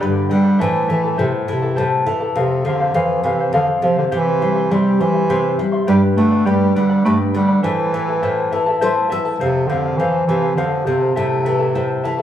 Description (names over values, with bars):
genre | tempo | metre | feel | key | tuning
andean folk | 68 BPM (dotted quarters) | 6/8 | straight | A minor | A4 = 440 Hz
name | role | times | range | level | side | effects
mellow bass clarinet | melody | 0.0-12.2 s | C3 to A3 | -17 LUFS | right 1 dB | none
charango | accompaniment | 0.0-12.2 s | E4 to C6 | -21 LUFS | left 2 dB | none
nylon-string guitar | accompaniment | 0.0-12.2 s | F2 to E5 | -21 LUFS | left 1 dB | none
room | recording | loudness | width
wet large studio reverb, RT60 1.4 s | band playing live in one room | -15 LUFS | side -10 dB against mid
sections
0.0-12.2 A section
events
nylon-string guitar fill 8.5-9.4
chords
0.0 G; 0.6 Am; 2.4 F; 4.1 C; 5.9 G; 7.6 Am; 9.4 F; 11.2 Am